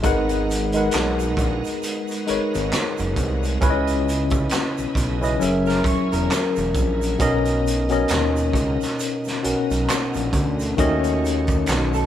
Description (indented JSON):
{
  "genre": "R&B, neo-soul",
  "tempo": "67 BPM",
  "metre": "4/4",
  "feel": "swing 58% on 16ths",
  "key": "G# minor",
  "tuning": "A4 = 439 Hz",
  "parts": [
    { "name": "tine electric piano", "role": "accompaniment", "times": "0.0-12.1 s", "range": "B2 to F#5", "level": "-22 LUFS", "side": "left 2 dB", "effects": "medium stereo tremolo" },
    { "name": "bright tonewheel organ", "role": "sustained chords", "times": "0.0-12.1 s", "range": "C#3 to A#5", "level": "-35 LUFS", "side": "right 1 dB", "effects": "overdrive, chorus vibrato, slow rotary speaker" },
    { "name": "fat analog bass", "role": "bass", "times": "0.0-12.1 s", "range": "E1 to D#2", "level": "-24 LUFS", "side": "right 1 dB", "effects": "none" },
    { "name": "crunchy breakbeat drum kit", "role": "drums", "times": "0.0-12.1 s", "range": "handclaps, hi-hat, kick drum, snare drum", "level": "-25 LUFS", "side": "right 1 dB", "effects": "none" },
    { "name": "tube shaker and finger snaps", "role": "percussion", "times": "0.0-12.1 s", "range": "none", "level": "-36 LUFS", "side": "right 5 dB", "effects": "none" },
    { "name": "electric guitar through a small old amp", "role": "second line", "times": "5.7-12.1 s", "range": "A4 to C#5", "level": "-25 LUFS", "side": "left 2 dB", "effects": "vibrato effect" }
  ],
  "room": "moderate studio reverb, RT60 0.7 s",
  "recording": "band playing live in one room",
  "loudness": "-19 LUFS",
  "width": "side -11 dB against mid",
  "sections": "0.0-12.1 A section",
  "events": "none",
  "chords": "0.0 G#m9; 3.6 C#m9; 5.4 F#9; 7.2 Bmaj9; 10.8 D#m7b5"
}